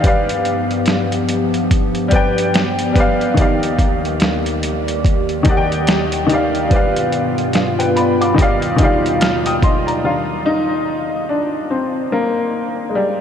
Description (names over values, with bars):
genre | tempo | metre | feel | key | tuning
lo-fi hip hop | 72 BPM | 4/4 | swing 59% on 16ths | Eb major | A4 = 439 Hz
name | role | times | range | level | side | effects
clear upright piano | accompaniment | 0.0-13.2 s | Eb3 to F6 | -17 LUFS | left 1 dB | low-pass filter
warbly tape-like pad | sustained chords | 0.0-10.0 s | Eb2 to D5 | -20 LUFS | equal | chorus, built-in reverb, low-pass filter
lo-fi sampler-style drum kit | drums | 0.0-10.0 s | hi-hat, kick drum, snare drum | -18 LUFS | equal | overdrive
room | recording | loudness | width
wet huge ambient reverb, RT60 8.1 s | dreamy mix soaked in reverb | -14 LUFS | side -8 dB against mid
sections
0.0-10.0 A section; 10.0-13.2 B section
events
upright piano solo 10.0-13.2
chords
0.0 G7; 3.4 Ebmaj7; 6.7 G7; 8.4 Ebmaj9; 10.0 Ebmaj7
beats
| 0.04 0.88 1.71 2.54 | 3.38 4.21 5.04 5.88 | 6.71 7.54 8.38 9.21 | 10.04 10.88 11.71 12.54